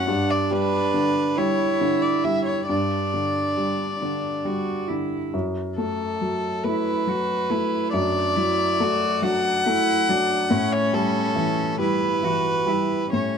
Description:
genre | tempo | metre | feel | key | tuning
neoclassical piano and strings | 46 BPM (dotted quarters) | 6/8 | rubato | unclear | A4 = 441 Hz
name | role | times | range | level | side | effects
warm violin | melody | 0.0-13.4 s | A4 to F#5 | -24 LUFS | left 1 dB | none
rich cello | second line | 0.0-13.4 s | C#4 to F#4 | -27 LUFS | right 8 dB | none
felt-muted upright piano | accompaniment | 0.0-13.4 s | F#2 to A3 | -24 LUFS | left 2 dB | none
room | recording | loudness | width
light reverb | close, detailed microphones | -20 LUFS | side -6 dB against mid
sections
0.0-13.4 A section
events
none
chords
0.1 G5; 5.3 D/F#; 10.5 A7

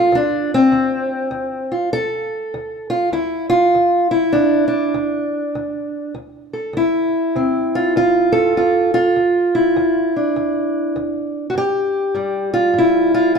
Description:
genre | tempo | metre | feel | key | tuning
acoustic country blues, solo or duo | 100 BPM | 4/4 | swing 64% on 8ths | D minor | A4 = 440 Hz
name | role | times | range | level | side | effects
fingerpicked steel-string acoustic guitar | solo | 0.0-13.4 s | D2 to A4 | -15 LUFS | equal | none
room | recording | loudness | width
moderate scoring stage reverb, RT60 1.7 s | close, detailed microphones | -15 LUFS | side -5 dB against mid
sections
0.0-1.9 A section; 1.9-13.4 B section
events
steel-string acoustic guitar solo 0.0-1.9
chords
0.0 Dm7; 1.9 Dm9; 11.6 G5

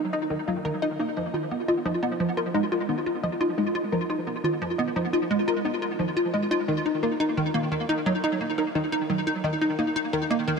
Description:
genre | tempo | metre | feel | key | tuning
ambient, sequencer-driven space music | 87 BPM | 4/4 | straight | Eb minor | A4 = 439 Hz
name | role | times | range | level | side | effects
wide unison pluck | arpeggios | 0.0-10.4 s | Eb3 to Eb5 | -30 LUFS | left 2 dB | auto-pan, tape echo
hollow square pluck | riff | 0.0-10.6 s | Eb3 to F4 | -25 LUFS | right 1 dB | wide subtle chorus, tape echo
room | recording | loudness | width
wet huge ambient reverb, RT60 8.9 s | none | -24 LUFS | side -5 dB against mid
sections
0.0-10.6 A section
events
filter sweep on synth arpeggio sound 0.0-10.6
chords
0.0 Ebm; 1.2 Fdim; 6.7 Eb5

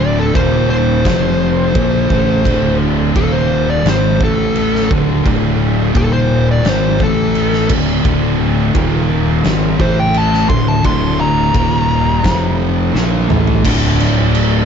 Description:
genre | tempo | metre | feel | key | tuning
stoner and doom metal | 86 BPM | 4/4 | straight | D minor | A4 = 439 Hz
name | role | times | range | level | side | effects
fuzz lead guitar | melody | 0.0-12.6 s | A4 to C6 | -18 LUFS | left 1 dB | distortion, tape echo
percussive tonewheel organ | sustained chords | 0.0-14.7 s | D3 to E5 | -29 LUFS | right 2 dB | none
fuzz guitar | riff | 0.0-14.7 s | D2 to Bb3 | -22 LUFS | left 1 dB | distortion
thick fuzz guitar | riff | 0.0-14.7 s | D2 to Bb3 | -18 LUFS | left 9 dB | distortion
thick fuzz guitar | riff | 0.0-14.7 s | D2 to Bb3 | -19 LUFS | right 11 dB | distortion
fuzz fingered electric bass | bass | 0.0-14.7 s | D1 to Bb1 | -19 LUFS | equal | overdrive
oversized low-tuned drum kit | drums | 0.4-14.5 s | crash cymbal, kick drum, snare drum, toms | -18 LUFS | right 1 dB | none
room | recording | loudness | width
light reverb, studio ambience | dark, warm production, nothing above 7.7 kHz | -11 LUFS | side -7 dB against mid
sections
0.0-13.6 A section; 13.6-14.7 B section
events
lead electric guitar solo 0.0-13.6; drum fill 12.9-13.6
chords
0.4 Eb5; 1.1 F5; 1.8 Dm; 3.2 Eb5; 3.9 Emaj7#5/G#; 4.2 A5; 4.9 D5; 6.0 Eb5; 6.7 Emaj7#5/G#; 7.0 A5; 7.7 D5; 8.8 Eb5; 9.4 Dm; 9.8 A5; 10.5 D5; 11.5 Eb5; 12.2 F5; 12.9 Dm

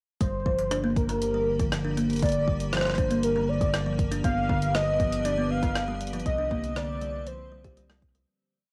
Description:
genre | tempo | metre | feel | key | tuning
IDM | 119 BPM | 4/4 | straight | G minor | A4 = 439 Hz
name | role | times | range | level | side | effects
warm velvety synth lead | melody | 0.2-7.8 s | Bb4 to F5 | -31 LUFS | equal | chorus, cassette tape, analog delay, plate reverb
icy glass pad | sustained chords | 0.7-8.3 s | D3 to C5 | -37 LUFS | equal | chorus, built-in reverb, cassette tape, plate reverb
kalimba | arpeggios | 0.2-8.3 s | D3 to G4 | -33 LUFS | equal | cassette tape, plate reverb
round analog bass | bass | 0.2-8.2 s | G1 to C2 | -36 LUFS | equal | none
electronic kick drum | drums | 0.2-8.1 s | none | -31 LUFS | equal | cassette tape
jungle sampler-style drum kit | drums | 0.2-8.2 s | hi-hat, rim click | -37 LUFS | equal | cassette tape
room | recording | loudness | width
moderate studio reverb, RT60 0.6 s | home recording on cassette | -27 LUFS | mono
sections
0.2-8.3 groove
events
fade-out 5.6-8.3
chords
0.2 Gm; 4.2 G; 6.3 Cm

